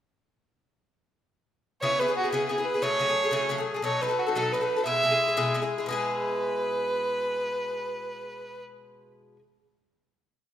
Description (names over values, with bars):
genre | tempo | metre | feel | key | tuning
celtic folk, Celtic jig | 119 BPM (dotted quarters) | 6/8 | straight | E major | A4 = 440 Hz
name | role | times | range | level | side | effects
rich fiddle | melody | 1.8-8.6 s | F#4 to E5 | -26 LUFS | right 1 dB | none
Irish bouzouki | accompaniment | 1.8-9.4 s | B2 to A4 | -29 LUFS | left 3 dB | none
room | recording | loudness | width
moderate recital hall reverb, RT60 1.5 s | minimal, uncompressed stereo recording | -24 LUFS | side -10 dB against mid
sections
1.8-5.9 A section; 5.9-7.9 final chord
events
none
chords
1.8 E6; 2.8 F#madd9; 3.8 B7; 4.8 E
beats
| 1.82 2.32 | 2.83 3.33 | 3.84 4.34 | 4.85 5.35 | 5.86 6.36 | 6.86 7.36